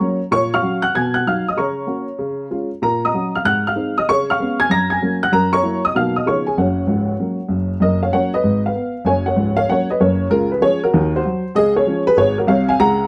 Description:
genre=jazz, stride piano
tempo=193 BPM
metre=4/4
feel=swing 66% on 8ths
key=F# major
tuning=A4 = 440 Hz
part: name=dark upright piano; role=solo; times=0.0-13.1 s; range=C#1 to A#6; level=-18 LUFS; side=equal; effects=none
room=light reverb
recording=none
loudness=-18 LUFS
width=mono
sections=0.0-7.8 A section; 7.8-13.1 B section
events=none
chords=0.3 F#/A#; 1.0 B; 1.6 F#/C#; 2.2 C#; 2.8 F#/A#; 3.4 G#7; 4.1 C#7; 4.7 F#; 5.3 F#7; 5.9 Bmaj7; 6.2 C#9; 6.6 F#; 8.4 Fdim/Ab; 9.1 F#; 10.3 C#; 10.9 Cdim/Eb; 11.5 C#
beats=0.01 | 0.33 0.64 0.95 1.26 | 1.57 1.89 2.20 2.51 | 2.82 3.13 3.44 3.76 | 4.07 4.38 4.69 5.00 | 5.32 5.63 5.94 6.25 | 6.56 6.87 7.18 7.50 | 7.81 8.12 8.43 8.74 | 9.05 9.36 9.67 9.98 | 10.30 10.61 10.92 11.23 | 11.54 11.85 12.16 12.47 | 12.78

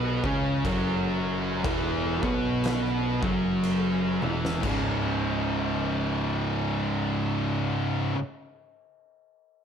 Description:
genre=stoner and doom metal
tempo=60 BPM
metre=4/4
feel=swing 59% on 8ths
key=C# minor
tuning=A4 = 437 Hz
part: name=scooped high-gain guitar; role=riff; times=0.0-8.2 s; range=C#2 to C#4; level=-32 LUFS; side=left 1 dB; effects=distortion
part: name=thick fuzz guitar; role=riff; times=0.0-8.2 s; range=C#2 to C#4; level=-30 LUFS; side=left 7 dB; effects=distortion
part: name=thick fuzz guitar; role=riff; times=0.0-8.2 s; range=C#2 to C#4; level=-29 LUFS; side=right 7 dB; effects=distortion
part: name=picked electric bass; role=bass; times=0.0-7.8 s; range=C#1 to C#2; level=-35 LUFS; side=equal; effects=tube saturation
part: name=oversized low-tuned drum kit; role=drums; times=0.2-4.9 s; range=crash cymbal, kick drum, snare drum, toms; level=-33 LUFS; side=equal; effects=none
room=light reverb, studio reverb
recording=none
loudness=-24 LUFS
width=side -8 dB against mid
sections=0.0-4.6 A section; 4.6-8.6 B section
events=drum fill 4.1-4.6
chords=0.0 F#5; 4.6 C#5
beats=| 0.65 1.65 2.64 3.64 | 4.63 5.63 6.62 7.62

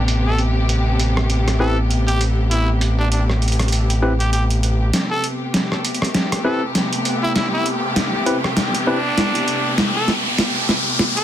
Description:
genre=glitch hop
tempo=99 BPM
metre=4/4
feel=swing 58% on 16ths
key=A minor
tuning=A4 = 440 Hz
part: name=growling trumpet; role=melody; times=0.0-11.2 s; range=D4 to A4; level=-25 LUFS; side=right 1 dB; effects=vintage 12-bit sampler grit, dub echo
part: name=clear chamber string section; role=sustained chords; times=0.0-11.2 s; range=C3 to G4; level=-24 LUFS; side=left 1 dB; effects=vintage 12-bit sampler grit
part: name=gritty driven synth bass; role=bass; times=0.0-4.9 s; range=A1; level=-17 LUFS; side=equal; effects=overdrive
part: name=boom bap sampler-style drum kit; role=drums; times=0.1-11.2 s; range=hi-hat, rim click, snare drum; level=-21 LUFS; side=equal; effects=low-pass filter on hats, studio reverb, low-pass filter on snare
part: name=tine electric piano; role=stabs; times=1.6-9.0 s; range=C4 to B4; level=-23 LUFS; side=left 1 dB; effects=overdrive, vintage 12-bit sampler grit, low-pass filter, dub echo
part: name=riser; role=sound effects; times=5.9-11.2 s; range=none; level=-23 LUFS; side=equal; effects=none
room=light reverb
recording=dense, heavily limited modern master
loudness=-16 LUFS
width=side -11 dB against mid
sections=0.0-4.9 A section; 4.9-11.2 B section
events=build-up 4.9-11.2; drum fill 4.9-11.2; riser 5.9-11.2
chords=0.0 Am9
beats=| 0.09 0.69 1.30 1.90 | 2.51 3.12 3.72 4.33 | 4.93 5.54 6.15 6.75 | 7.36 7.96 8.57 9.18 | 9.78 10.39 10.99

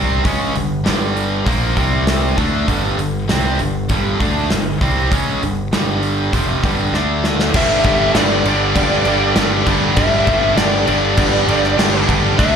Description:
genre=hard rock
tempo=99 BPM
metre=4/4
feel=straight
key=G major from 7.5 s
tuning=A4 = 440 Hz
part: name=distorted electric guitar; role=riff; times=0.0-12.6 s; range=F2 to D4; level=-20 LUFS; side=right 12 dB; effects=overdrive, slapback echo
part: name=high-gain distorted guitar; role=riff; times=0.0-12.6 s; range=F2 to D4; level=-21 LUFS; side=left 13 dB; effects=distortion, slapback echo
part: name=modern bright picked electric bass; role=bass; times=0.0-12.6 s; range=F1 to D2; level=-20 LUFS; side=equal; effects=none
part: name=gated 80s drum kit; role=drums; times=0.3-12.5 s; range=crash cymbal, hi-hat, kick drum, snare drum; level=-20 LUFS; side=equal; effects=none
part: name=warm analog pad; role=sustained chords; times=7.5-12.6 s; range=G3 to E5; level=-31 LUFS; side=equal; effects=none
part: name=distorted electric guitar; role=riff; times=7.5-12.6 s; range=G2 to D4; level=-21 LUFS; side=equal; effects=overdrive, slapback echo
part: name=smooth overdriven lead guitar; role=melody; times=7.6-12.6 s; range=D5 to E5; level=-18 LUFS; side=left 1 dB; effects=slapback echo
room=light reverb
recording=live gig heard through the venue's PA, club reverb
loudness=-14 LUFS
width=side -7 dB against mid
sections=0.0-7.5 A section; 7.5-12.6 B section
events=drum fill 6.9-7.5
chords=0.0 G5; 1.8 C5; 2.4 G5; 6.9 D5; 7.5 G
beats=| 0.25 0.86 1.47 2.07 | 2.68 3.29 3.90 4.51 | 5.12 5.72 6.33 6.94 | 7.55 8.15 8.76 9.36 | 9.97 10.57 11.18 11.78 | 12.39

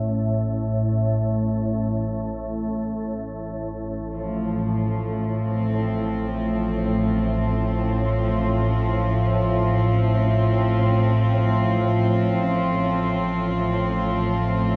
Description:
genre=dark ambient drone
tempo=free time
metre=none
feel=none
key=unclear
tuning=A4 = 440 Hz
part: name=organ-like drone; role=drone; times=0.0-14.8 s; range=A1 to A2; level=-24 LUFS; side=equal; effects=ensemble chorus, built-in reverb
part: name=clear studio cello section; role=sustained chords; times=4.1-14.8 s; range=F3 to F4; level=-27 LUFS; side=equal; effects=none
room=wet cathedral reverb, RT60 5.4 s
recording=dark, warm production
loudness=-23 LUFS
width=mono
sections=0.0-14.8 A section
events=none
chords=0.0 N.C.; 4.1 F5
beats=free time

